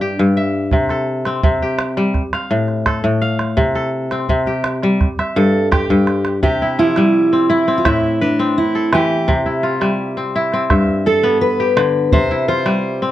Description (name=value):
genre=west african traditional, West African string and xylophone music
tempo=84 BPM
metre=4/4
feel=straight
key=C major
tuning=A4 = 440 Hz
part: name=fingerpicked steel-string acoustic guitar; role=melody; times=0.0-0.3, 5.4-13.1 s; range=D4 to C5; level=-17 LUFS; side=right 1 dB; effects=none
part: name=kora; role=arpeggios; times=0.0-13.1 s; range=G2 to F5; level=-16 LUFS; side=left 1 dB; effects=none
part: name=calabash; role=percussion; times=0.7-12.8 s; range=none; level=-19 LUFS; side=right 2 dB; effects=none
room=light reverb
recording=worn, warbling old tape, cassette tape, warbly pitch drift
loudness=-14 LUFS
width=side -13 dB against mid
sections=0.0-6.4 A section; 6.4-13.1 B section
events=drum fill 5.9-6.4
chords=0.0 G5; 0.7 C; 2.2 F/A; 3.6 C5; 5.0 Emadd11/G; 6.4 C; 7.9 Am; 9.3 C; 10.7 G; 12.1 C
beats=0.01 | 0.72 1.44 2.15 2.87 | 3.58 4.30 5.01 5.72 | 6.44 7.15 7.86 8.57 | 9.28 9.99 10.71 11.42 | 12.13 12.84